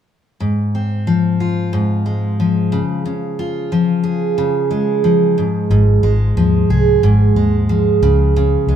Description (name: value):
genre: pop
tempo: 91 BPM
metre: 4/4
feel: straight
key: Ab major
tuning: A4 = 440 Hz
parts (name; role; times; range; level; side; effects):
- picked steel-string acoustic guitar; accompaniment; 0.4-8.8 s; Ab2 to Ab4; -14 LUFS; equal; none
- vintage muted fingered electric bass; bass; 5.7-8.8 s; Ab1 to Eb2; -15 LUFS; equal; none
room: moderate stone room reverb, RT60 1.0 s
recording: band playing live in one room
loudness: -13 LUFS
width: side -9 dB against mid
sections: 0.4-5.7 A section; 5.7-8.8 B section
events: none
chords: 0.4 Ab6; 2.7 Db; 5.4 N.C.; 5.7 Ab5; 8.0 Db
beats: | 0.41 1.07 1.73 2.39 | 3.06 3.72 4.38 5.04 | 5.70 6.37 7.03 7.69 | 8.35